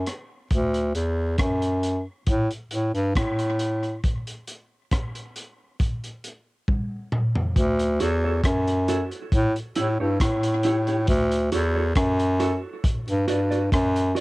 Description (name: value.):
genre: dub reggae.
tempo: 68 BPM.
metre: 4/4.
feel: straight.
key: D major.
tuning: A4 = 440 Hz.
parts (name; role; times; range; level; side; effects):
clear bass clarinet; bass; 0.0-14.1 s; D2 to A2; -22 LUFS; equal; none.
crunchy breakbeat drum kit; drums; 0.1-14.2 s; hi-hat, kick drum, rim click, toms; -25 LUFS; equal; cassette tape.
mellow electric guitar; accompaniment; 8.0-14.2 s; E4 to D5; -30 LUFS; right 3 dB; tape echo.
room: little or no reverb.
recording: home recording on cassette.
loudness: -21 LUFS.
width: side -21 dB against mid.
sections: 0.0-7.6 A section; 7.6-14.2 B section.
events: break 0.0-7.6; drum fill 6.7-7.6.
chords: 0.0 N.C.; 0.5 D; 2.3 N.C.; 7.6 Dmaj7; 9.3 A7; 11.1 Dmaj7; 12.8 Gmaj7.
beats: | 0.51 1.39 2.27 3.16 | 4.04 4.92 5.80 6.68 | 7.56 8.44 9.32 10.20 | 11.08 11.96 12.84 13.72.